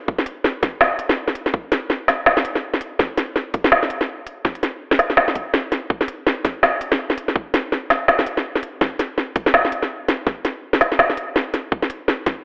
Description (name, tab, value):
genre	drum and bass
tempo	165 BPM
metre	4/4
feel	swing 58% on 16ths, half-time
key	none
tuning	none
part	electronic kick drum	drums	0.1-12.3 s	none	-22 LUFS	equal	small room ambience
part	organic electronic drum kit	drums	0.2-12.3 s	hi-hat, snare drum	-17 LUFS	equal	overdrive, small room ambience
room	moderate lush hall reverb, RT60 1.9 s, digital ambience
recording	telephone sound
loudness	-17 LUFS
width	side -26 dB against mid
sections	0.0-12.4 A section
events	none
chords	none